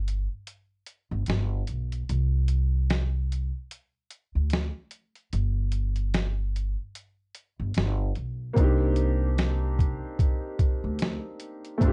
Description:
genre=lo-fi hip hop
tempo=74 BPM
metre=4/4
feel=swing 58% on 16ths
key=C minor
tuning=A4 = 439 Hz
part: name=upright bass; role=bass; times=0.0-11.9 s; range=G1 to D2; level=-28 LUFS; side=equal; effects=none
part: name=boom bap sampler-style drum kit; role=drums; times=0.1-11.9 s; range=hi-hat, kick drum, snare drum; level=-29 LUFS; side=equal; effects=none
part: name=felt-muted upright piano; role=accompaniment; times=8.5-11.9 s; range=A3 to G4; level=-32 LUFS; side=equal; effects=cassette tape, low-pass filter
room=little or no reverb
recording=cassette tape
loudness=-27 LUFS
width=mono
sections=0.0-11.9 A section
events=break 0.0-8.6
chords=0.0 N.C.; 1.3 G; 2.1 N.C.; 7.8 G; 8.6 Cm7

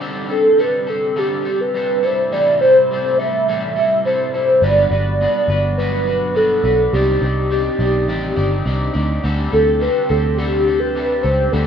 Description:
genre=indie pop, bedroom pop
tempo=104 BPM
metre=4/4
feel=straight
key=unclear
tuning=A4 = 438 Hz
part: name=electric guitar at the edge of break-up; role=accompaniment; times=0.0-11.7 s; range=A2 to D5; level=-25 LUFS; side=left 1 dB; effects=lush chorus, warbly pitch drift
part: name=string machine, cellos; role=sustained chords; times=0.0-11.7 s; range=C3 to G4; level=-27 LUFS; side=right 1 dB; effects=ensemble chorus
part: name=hollow clarinet-like synth lead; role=melody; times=0.3-11.7 s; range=G4 to E5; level=-16 LUFS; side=equal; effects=ensemble chorus, slapback echo
part: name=vintage muted picked electric bass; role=bass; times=4.6-11.7 s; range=G1 to D2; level=-20 LUFS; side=equal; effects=none
room=moderate studio reverb, RT60 0.6 s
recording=rough home demo mix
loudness=-14 LUFS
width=side -8 dB against mid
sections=0.0-11.7 A section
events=none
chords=0.0 D7sus4; 2.0 Am7; 4.6 Gmaj7; 6.9 Cmadd9; 9.2 D7sus4

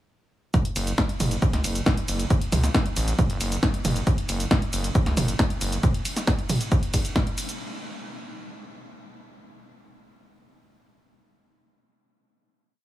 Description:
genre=driving peak-time techno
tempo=136 BPM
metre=4/4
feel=straight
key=F# minor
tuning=A4 = 441 Hz
part: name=electronic kick drum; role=drums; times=0.5-7.2 s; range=none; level=-23 LUFS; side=equal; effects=none
part: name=punchy analog drum machine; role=drums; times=0.5-7.6 s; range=hi-hat, ride cymbal, shaker, snare drum, toms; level=-26 LUFS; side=equal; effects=sidechain pumping on hats, sidechain pumping on toms, sidechain pumping on perc, sidechain pumping on cymbals
part: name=gritty driven synth bass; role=bass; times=0.8-5.8 s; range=F#1 to C#2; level=-26 LUFS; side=equal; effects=sidechain pumping
room=light reverb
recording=heavily compressed radio sound, multiband compression, small room ambience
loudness=-22 LUFS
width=side -14 dB against mid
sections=0.5-7.6 drop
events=drop 0.5-7.6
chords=none

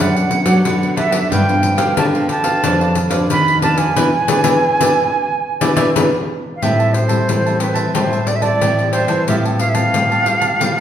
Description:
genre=samba and choro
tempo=90 BPM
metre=4/4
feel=straight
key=A minor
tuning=A4 = 440 Hz
part: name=silver concert flute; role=melody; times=0.0-10.8 s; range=B4 to B5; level=-18 LUFS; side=right 2 dB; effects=none
part: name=cavaquinho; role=accompaniment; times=0.0-10.8 s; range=D4 to A5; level=-23 LUFS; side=right 3 dB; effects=none
part: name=nylon-string guitar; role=accompaniment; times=0.0-10.8 s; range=F2 to F4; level=-22 LUFS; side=left 2 dB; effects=none
part: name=nylon-string guitar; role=bass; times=0.0-10.8 s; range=F2 to F#3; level=-19 LUFS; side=equal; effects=none
part: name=pandeiro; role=percussion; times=0.2-10.8 s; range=none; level=-21 LUFS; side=left 4 dB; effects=none
room=wet recital hall reverb, RT60 1.7 s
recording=recorded in a church or concert hall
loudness=-13 LUFS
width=side -10 dB against mid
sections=0.0-6.6 A section; 6.6-10.8 B section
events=band accent 4.0-6.6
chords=0.0 Bm/F#; 1.3 G7; 2.6 Bdim/F; 4.0 E7; 6.6 Am7; 9.3 Fadd9/A

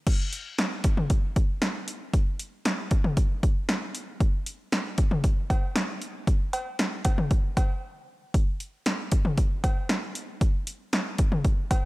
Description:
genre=pop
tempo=116 BPM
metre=4/4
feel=straight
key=none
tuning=none
part: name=punchy analog drum machine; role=drums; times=0.1-11.8 s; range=cowbell, crash cymbal, hi-hat, kick drum, snare drum, toms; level=-24 LUFS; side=equal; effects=none
room=light reverb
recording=none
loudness=-24 LUFS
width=side -20 dB against mid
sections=0.1-8.3 A section; 8.3-11.9 B section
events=break 7.8-8.3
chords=none

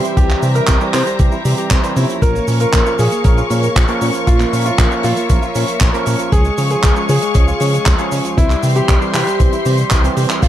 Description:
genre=italo disco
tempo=117 BPM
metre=4/4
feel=straight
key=unclear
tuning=A4 = 440 Hz
part: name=warm grand piano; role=melody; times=0.0-10.5 s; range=E4 to C5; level=-21 LUFS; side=equal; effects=digital delay
part: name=rich studio string section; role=sustained chords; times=0.0-10.5 s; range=Ab3 to Db6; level=-22 LUFS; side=left 2 dB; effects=none
part: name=direct-recorded clean electric guitar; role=arpeggios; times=0.0-10.5 s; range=E3 to C5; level=-25 LUFS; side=left 2 dB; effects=ping-pong delay
part: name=barky tine electric piano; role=stabs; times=0.0-10.4 s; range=E3 to Db5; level=-23 LUFS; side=right 4 dB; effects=overdrive
part: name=damped 70s drum kit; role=drums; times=0.0-10.5 s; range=cabasa, crash cymbal, handclaps, hi-hat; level=-21 LUFS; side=right 1 dB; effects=studio reverb
part: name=chorused synth bass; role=bass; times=0.2-10.5 s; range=Bb1 to Db3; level=-18 LUFS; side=equal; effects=none
part: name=electronic kick drum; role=drums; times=0.2-10.5 s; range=none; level=-13 LUFS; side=equal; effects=studio reverb
room=light reverb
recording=dark, warm production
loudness=-12 LUFS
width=side -12 dB against mid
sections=0.0-10.4 A section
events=drum fill 9.9-10.4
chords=0.0 C; 2.2 Bbm; 6.3 Db; 8.4 C

